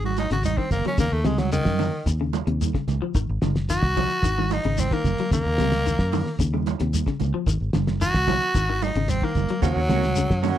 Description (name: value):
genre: afrobeat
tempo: 111 BPM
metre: 4/4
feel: straight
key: Eb dorian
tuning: A4 = 440 Hz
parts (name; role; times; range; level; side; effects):
- raspy tenor saxophone; melody; 0.0-10.6 s; Eb3 to Gb4; -25 LUFS; equal; slapback echo
- fingered electric bass; bass; 0.0-10.5 s; Gb1 to Gb2; -25 LUFS; equal; none
- congas; percussion; 0.0-10.6 s; none; -30 LUFS; right 17 dB; none
- cloth-damped thuddy drum kit; drums; 0.2-10.6 s; hi-hat, kick drum, snare drum; -26 LUFS; equal; none
- shekere; percussion; 0.2-10.6 s; none; -29 LUFS; left 2 dB; none
- semi-hollow electric guitar; arpeggios; 0.3-10.6 s; C3 to Gb3; -29 LUFS; left 6 dB; lush chorus
- clean electric guitar; stabs; 9.6-10.6 s; Bb3 to Gb4; -28 LUFS; right 12 dB; tremolo
room: little or no reverb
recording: dry, close 1970s-style studio recording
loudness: -20 LUFS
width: side -11 dB against mid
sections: 0.0-10.6 A section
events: tenor saxophone solo 0.0-10.6; drum fill 0.5-1.0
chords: 0.0 Ab7(no3); 1.0 Eb7(no3); 3.2 Ab7(no3); 5.3 Eb7(no3); 7.5 Ab7(no3); 9.6 Ebm7